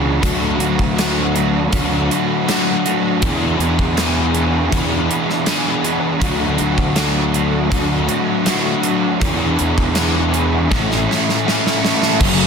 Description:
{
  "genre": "rock, shoegaze and dream pop",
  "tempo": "80 BPM",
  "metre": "4/4",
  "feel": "straight",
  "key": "D lydian",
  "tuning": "A4 = 440 Hz",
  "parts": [
    { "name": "overdriven semi-hollow guitar", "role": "riff", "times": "0.0-12.5 s", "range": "F#2 to G#4", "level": "-20 LUFS", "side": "left 14 dB", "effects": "ensemble chorus" },
    { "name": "raw garage guitar", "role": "riff", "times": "0.0-12.5 s", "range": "F#2 to A4", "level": "-20 LUFS", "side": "right 11 dB", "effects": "overdrive, reverse reverb" },
    { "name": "fuzz fingered electric bass", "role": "bass", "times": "0.0-12.5 s", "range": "F#1 to E2", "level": "-20 LUFS", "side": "equal", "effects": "overdrive" },
    { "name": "gated 80s drum kit", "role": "drums", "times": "0.2-12.4 s", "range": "crash cymbal, hi-hat, kick drum, snare drum", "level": "-20 LUFS", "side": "right 1 dB", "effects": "none" }
  ],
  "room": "light reverb, small room ambience",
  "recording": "dense, heavily limited modern master",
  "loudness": "-14 LUFS",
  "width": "side -6 dB against mid",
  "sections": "0.0-12.2 A section",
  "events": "drum fill 10.7-12.2",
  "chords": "0.2 D; 3.2 E7; 6.2 D; 9.2 E7; 10.7 A",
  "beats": "| 0.22 0.97 1.72 2.47 | 3.22 3.97 4.72 5.47 | 6.22 6.97 7.71 8.46 | 9.21 9.96 10.71 11.46 | 12.20"
}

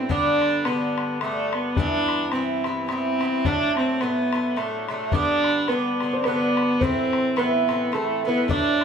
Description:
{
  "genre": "celtic folk, Celtic waltz",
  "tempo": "107 BPM",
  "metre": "3/4",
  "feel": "swing 57% on 8ths",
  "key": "unclear",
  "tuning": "A4 = 440 Hz",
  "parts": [
    { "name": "rich fiddle", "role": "melody", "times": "0.0-8.8 s", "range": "A3 to D4", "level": "-23 LUFS", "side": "equal", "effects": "none" },
    { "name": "Irish bouzouki", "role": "accompaniment", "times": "0.0-8.8 s", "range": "G2 to E4", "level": "-26 LUFS", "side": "right 2 dB", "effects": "none" },
    { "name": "bodhran", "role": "percussion", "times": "0.1-8.8 s", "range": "none", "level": "-29 LUFS", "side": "left 4 dB", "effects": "none" },
    { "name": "concert harp", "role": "second line", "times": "5.1-8.8 s", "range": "A4 to D5", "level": "-28 LUFS", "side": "right 1 dB", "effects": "none" }
  ],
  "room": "wet large studio reverb, RT60 0.9 s",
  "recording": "band playing live in one room",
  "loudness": "-20 LUFS",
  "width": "side -7 dB against mid",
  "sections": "0.0-8.8 A section",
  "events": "none",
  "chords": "0.1 G; 1.8 Em; 3.5 D; 5.1 G; 6.8 Am",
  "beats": "| 0.10 0.66 1.22 | 1.78 2.34 2.90 | 3.45 4.01 4.57 | 5.13 5.69 6.25 | 6.81 7.37 7.93 | 8.50"
}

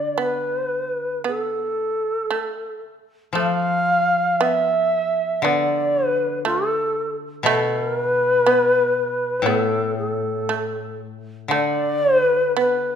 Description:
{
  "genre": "japanese traditional, Japanese chamber music",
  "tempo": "55-62 BPM",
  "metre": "4/4",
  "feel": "rubato",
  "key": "D kumoi",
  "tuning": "A4 = 440 Hz",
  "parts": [
    { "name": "reedy long shakuhachi", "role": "melody", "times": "0.0-13.0 s", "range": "A4 to F5", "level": "-20 LUFS", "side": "equal", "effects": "none" },
    { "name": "shamisen", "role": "second line", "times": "0.0-13.0 s", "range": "A3 to B3", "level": "-25 LUFS", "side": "right 6 dB", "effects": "none" },
    { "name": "koto", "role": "accompaniment", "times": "0.0-13.0 s", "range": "A2 to F3", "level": "-26 LUFS", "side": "left 5 dB", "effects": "none" }
  ],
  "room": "moderate recital hall reverb, RT60 1.6 s",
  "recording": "minimal, uncompressed stereo recording",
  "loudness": "-18 LUFS",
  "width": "side -8 dB against mid",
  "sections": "0.0-13.0 A section",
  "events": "none",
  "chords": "none",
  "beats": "0.17 1.25 2.30 | 3.35 4.40 5.43 6.43 | 7.45 8.45 9.45 10.47 | 11.51 12.56"
}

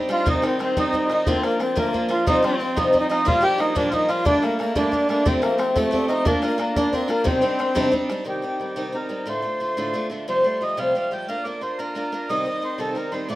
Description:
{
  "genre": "celtic folk, Celtic jig",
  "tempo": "120 BPM (dotted quarters)",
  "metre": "6/8",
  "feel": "straight",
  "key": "C dorian",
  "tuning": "A4 = 437 Hz",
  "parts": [
    { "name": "picked steel-string acoustic guitar", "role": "accompaniment", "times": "0.0-13.4 s", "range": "D2 to Bb4", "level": "-23 LUFS", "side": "equal", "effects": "none" },
    { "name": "mellow accordion", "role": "melody", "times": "0.1-13.4 s", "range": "A3 to G5", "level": "-23 LUFS", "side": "equal", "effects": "none" },
    { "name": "breathy mellow long shakuhachi", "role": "second line", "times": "0.1-7.9 s", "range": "C4 to D5", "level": "-32 LUFS", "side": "right 3 dB", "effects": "none" },
    { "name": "warm fiddle", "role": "second line", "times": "0.1-7.9, 12.3-13.4 s", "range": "A3 to Eb5", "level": "-29 LUFS", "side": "left 2 dB", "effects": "none" },
    { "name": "bodhran", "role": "percussion", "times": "0.1-8.2 s", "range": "none", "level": "-27 LUFS", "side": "equal", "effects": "none" }
  ],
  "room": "moderate plate reverb, RT60 2.3 s",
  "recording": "rough home demo mix",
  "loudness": "-19 LUFS",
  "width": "side -16 dB against mid",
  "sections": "0.3-8.3 A section; 8.3-13.4 B section",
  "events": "none",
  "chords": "0.3 Cm; 1.3 Bb/D; 2.3 Fsus2/C; 3.3 Bb6; 4.3 Gmadd9; 5.3 Fadd9; 6.3 Bb; 7.3 Cmadd9; 8.3 Cm; 9.3 Dm; 10.3 Fadd9; 11.3 Bb; 12.3 Cm",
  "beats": "| 0.27 0.77 | 1.27 1.77 | 2.27 2.76 | 3.26 3.76 | 4.26 4.76 | 5.26 5.76 | 6.26 6.76 | 7.26 7.76 | 8.26 8.77 | 9.27 9.77 | 10.27 10.78 | 11.28 11.78 | 12.28 12.79 | 13.29"
}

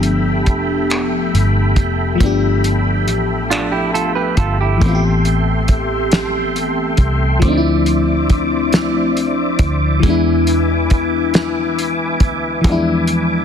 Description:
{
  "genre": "slow six-eight R&B",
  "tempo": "46 BPM (dotted quarters)",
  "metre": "6/8",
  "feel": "straight",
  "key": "unclear",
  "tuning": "A4 = 440 Hz",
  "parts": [
    { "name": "FM electric piano with soft pad layer", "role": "accompaniment", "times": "0.0-13.4 s", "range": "E3 to G4", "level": "-18 LUFS", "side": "left 3 dB", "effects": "chorus, phaser" },
    { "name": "tonewheel organ", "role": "sustained chords", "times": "0.0-13.4 s", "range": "A4 to D6", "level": "-22 LUFS", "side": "right 1 dB", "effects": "overdrive, chorus vibrato, slow rotary speaker" },
    { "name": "vintage muted fingered electric bass", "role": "bass", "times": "0.0-13.4 s", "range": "F1 to E2", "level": "-19 LUFS", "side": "equal", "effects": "none" },
    { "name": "cloth-damped thuddy drum kit", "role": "drums", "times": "0.0-13.3 s", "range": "finger snaps, hi-hat, kick drum, snare drum", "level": "-16 LUFS", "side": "equal", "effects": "none" },
    { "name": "semi-hollow electric guitar", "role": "second line", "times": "3.5-5.0 s", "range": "D4 to B4", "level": "-20 LUFS", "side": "right 7 dB", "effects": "none" }
  ],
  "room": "light reverb, studio ambience",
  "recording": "dense, heavily limited modern master",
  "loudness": "-13 LUFS",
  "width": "side -8 dB against mid",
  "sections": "0.0-4.8 A section; 4.8-13.4 B section",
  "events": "none",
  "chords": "0.0 G9; 4.8 Am7; 7.4 Dm9; 10.0 E7",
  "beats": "0.91 | 2.21 3.52 | 4.82 6.13 | 7.43 8.73 | 10.04 11.34 | 12.65"
}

